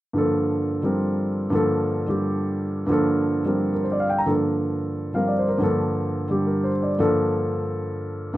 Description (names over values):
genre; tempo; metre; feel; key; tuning
jazz; 175 BPM; 4/4; swing 64% on 8ths; G minor; A4 = 440 Hz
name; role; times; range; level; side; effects
warm grand piano; accompaniment; 0.1-8.4 s; G2 to Bb5; -21 LUFS; equal; none
room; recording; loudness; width
moderate studio reverb, RT60 0.5 s; none; -21 LUFS; side -15 dB against mid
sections
0.1-8.4 A section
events
none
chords
0.1 Gm7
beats
| 0.14 0.48 0.83 1.17 | 1.51 1.85 2.20 2.54 | 2.88 3.22 3.56 3.91 | 4.25 4.59 4.93 5.28 | 5.62 5.96 6.30 6.64 | 6.99 7.33 7.67 8.01 | 8.36